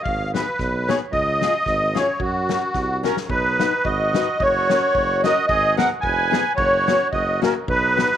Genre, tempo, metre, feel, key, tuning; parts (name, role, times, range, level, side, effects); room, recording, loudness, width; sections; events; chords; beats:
alpine folk, alpine dance band; 110 BPM; 2/4; swing 55% on 8ths; F# major, B major from 3.3 s; A4 = 440 Hz
musette accordion; melody; 0.0-8.2 s; F#4 to G#5; -19 LUFS; equal
mellow tuba; bass; 0.1-8.0 s; E#1 to F#2; -27 LUFS; right 2 dB
natural country drum kit; drums; 0.1-8.2 s; kick drum, snare drum; -28 LUFS; left 2 dB
fingerpicked old ladder-braced acoustic guitar; accompaniment; 0.3-8.1 s; A#3 to B4; -27 LUFS; left 9 dB
clear trumpet; second line; 3.1-8.2 s; C#4 to B4; -26 LUFS; right 13 dB; tape echo
moderate spring reverb, RT60 1.8 s; 1960s-style stereo with parts hard left and right; -18 LUFS; side -10 dB against mid
0.0-3.3 A section; 3.3-8.2 B section
drum fill 2.7-3.3
0.0 G#m; 1.1 C#; 2.2 F#; 3.3 B; 4.4 F#; 5.5 G#m; 6.6 F#sus4; 7.1 F#
| 0.04 0.58 | 1.12 1.65 | 2.20 2.75 | 3.30 3.86 | 4.41 4.95 | 5.49 6.03 | 6.57 7.12 | 7.68